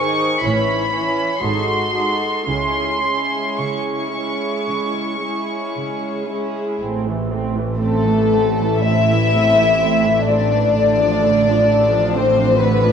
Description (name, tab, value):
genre	classical, slow romantic movement for string orchestra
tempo	54-68 BPM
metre	4/4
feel	rubato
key	C# minor, A minor from 6.8 s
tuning	A4 = 440 Hz
part	warm studio violin section	melody	0.0-12.9 s	A3 to C#6	-22 LUFS	left 2 dB	none
part	warm studio violin section	second line	0.0-12.9 s	E4 to E5	-19 LUFS	left 3 dB	none
part	warm studio viola section	accompaniment	0.0-12.9 s	D3 to D#4	-23 LUFS	right 3 dB	none
part	dark studio cello section	bass	0.0-12.9 s	G#2 to C#3	-24 LUFS	right 3 dB	none
part	warm studio double bass section	bass	0.4-12.9 s	G#1 to C#2	-24 LUFS	right 3 dB	none
room	wet scoring stage reverb, RT60 1.8 s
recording	worn, warbling old tape, cassette tape, warbly pitch drift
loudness	-16 LUFS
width	side -7 dB against mid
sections	0.0-6.8 A section; 6.8-12.9 B section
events	none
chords	0.4 A; 1.4 G#7b9; 2.5 C#m; 6.8 Am; 10.8 Dm/A